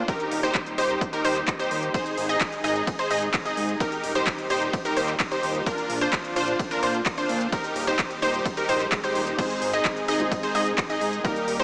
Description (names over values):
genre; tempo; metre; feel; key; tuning
EDM, festival progressive house; 129 BPM; 4/4; straight; Eb major; A4 = 438 Hz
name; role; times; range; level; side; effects
supersaw pad; sustained chords; 0.0-11.6 s; Bb2 to Ab4; -34 LUFS; equal; none
wide unison pluck; arpeggios; 0.0-11.6 s; Bb4 to Eb5; -28 LUFS; equal; vintage 12-bit sampler grit, sidechain pumping, dub echo
supersaw stab; riff; 0.0-11.6 s; D4 to Eb5; -26 LUFS; equal; sidechain pumping, dub echo
fat analog bass; bass; 0.0-11.6 s; Eb1 to Bb2; -32 LUFS; equal; sidechain pumping
big-room dance drum kit; drums; 0.1-11.6 s; crash cymbal, handclaps, hi-hat, ride cymbal; -31 LUFS; equal; none
electronic kick drum; drums; 0.1-11.3 s; none; -30 LUFS; equal; overdrive
swell; sound effects; 8.8-9.4 s; none; -37 LUFS; equal; none
dark baby grand piano; accompaniment; 9.4-11.6 s; Ab2 to C5; -30 LUFS; equal; sidechain pumping
room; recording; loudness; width
moderate lush hall reverb, RT60 2.0 s; small speaker sound; -22 LUFS; side -33 dB against mid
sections
0.0-11.6 A section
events
none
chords
0.1 Eb; 1.9 Ab; 3.8 Eb; 5.7 Bb; 7.5 Eb; 9.4 Ab